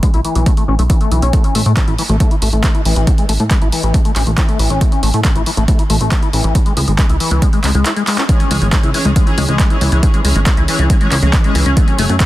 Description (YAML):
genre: uplifting trance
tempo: 138 BPM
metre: 4/4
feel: straight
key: unclear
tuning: A4 = 438 Hz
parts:
  - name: liquid acid bass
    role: arpeggios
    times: 0.0-12.3 s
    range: G#2 to E4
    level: -19 LUFS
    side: left 3 dB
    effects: wide subtle chorus, sidechain pumping, digital delay
  - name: electronic kick drum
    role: drums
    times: 0.0-12.3 s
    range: none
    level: -13 LUFS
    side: equal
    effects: none
  - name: punchy analog drum machine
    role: drums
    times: 0.0-12.3 s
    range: handclaps, hi-hat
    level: -21 LUFS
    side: right 1 dB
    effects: none
  - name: plucky analog bass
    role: bass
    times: 0.1-12.2 s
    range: F#1 to A2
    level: -14 LUFS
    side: equal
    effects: sidechain pumping
  - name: clear symphonic string section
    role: sustained chords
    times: 8.3-12.3 s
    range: E3 to C#5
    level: -21 LUFS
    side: right 1 dB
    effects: sidechain pumping
room: little or no reverb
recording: dense, heavily limited modern master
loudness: -11 LUFS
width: side -16 dB against mid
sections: 0.0-12.3 A section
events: filter sweep on acid bass 0.0-12.3; break 7.9-8.3; drum fill 8.1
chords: 0.0 B5; 1.3 A5; 6.6 C#m